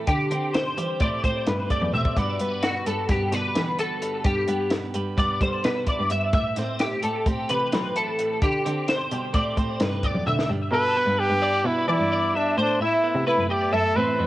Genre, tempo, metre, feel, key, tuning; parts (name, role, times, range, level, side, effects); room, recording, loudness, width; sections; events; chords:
math rock and midwest emo; 259 BPM (eighths); 9/8; straight; G major; A4 = 440 Hz
twelve-string electric guitar; accompaniment; 0.0-14.3 s; G2 to D5; -33 LUFS; right 5 dB; cassette tape
twelve-string electric guitar; arpeggios; 0.0-14.3 s; C4 to E5; -25 LUFS; left 1 dB; ensemble chorus, cassette tape, analog delay
rich cello; bass; 0.1-14.3 s; E2 to G3; -28 LUFS; equal
compact cocktail drum kit; drums; 0.1-10.5 s; hi-hat, kick drum, snare drum, toms; -26 LUFS; equal; cassette tape
breathy trumpet; melody; 10.7-14.3 s; D4 to B4; -22 LUFS; equal; cassette tape
light reverb, studio ambience; home recording on cassette; -21 LUFS; side -15 dB against mid
0.0-10.5 A section; 10.5-14.3 B section
drum fill 1.8-2.2, 10.1-10.5
0.1 D7sus4; 1.0 Am7; 2.2 Gmaj7; 4.3 Cmaj7/G (rootless); 6.3 Am7; 8.4 D7sus4; 9.3 Am7; 10.5 G6; 12.6 Amadd9